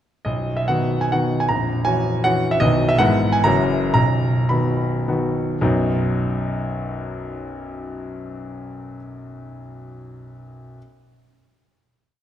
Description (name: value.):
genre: classical, romantic triple-time dance for piano with dotted rhythms.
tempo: 101-170 BPM.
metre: 3/4.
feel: rubato.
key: B major.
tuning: A4 = 440 Hz.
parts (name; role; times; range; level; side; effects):
clear grand piano; solo; 0.2-10.8 s; A#0 to B5; -19 LUFS; equal; none.
room: wet concert hall reverb, RT60 1.9 s.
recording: minimal, uncompressed stereo recording.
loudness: -18 LUFS.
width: side -10 dB against mid.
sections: 0.3-5.6 A section; 5.6-8.6 final chord.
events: slowing down 2.1-5.6.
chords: 0.3 B; 1.5 F#7/A#; 2.6 B; 3.0 E/G#; 3.4 F#7; 3.9 B.